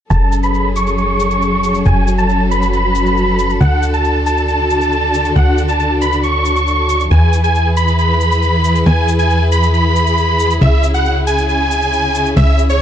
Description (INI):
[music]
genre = uplifting trance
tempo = 137 BPM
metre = 4/4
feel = straight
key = F# minor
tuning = A4 = 441 Hz
[part]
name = dense compressed supersaw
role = melody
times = 0.1-12.8 s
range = C#5 to C#6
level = -16 LUFS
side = right 1 dB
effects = low-pass filter, ping-pong delay
[part]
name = clear studio string section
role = sustained chords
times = 0.1-12.8 s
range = C#3 to B4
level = -18 LUFS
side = left 1 dB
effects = none
[part]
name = plucky analog bass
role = bass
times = 0.1-12.8 s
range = F#1 to E2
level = -15 LUFS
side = equal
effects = none
[part]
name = shaker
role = drums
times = 0.1-12.8 s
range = none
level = -34 LUFS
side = left 11 dB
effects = low-pass filter on perc
[sound]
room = light reverb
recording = dark, warm production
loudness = -11 LUFS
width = side -9 dB against mid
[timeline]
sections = 0.1-12.8 A section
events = none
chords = 0.1 F#madd9; 3.6 D; 7.1 E; 10.6 C#m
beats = | 0.10 0.54 0.98 1.42 | 1.85 2.29 2.73 3.17 | 3.61 4.04 4.48 4.92 | 5.36 5.80 6.24 6.67 | 7.11 7.55 7.99 8.42 | 8.86 9.30 9.74 10.18 | 10.61 11.05 11.49 11.93 | 12.37 12.80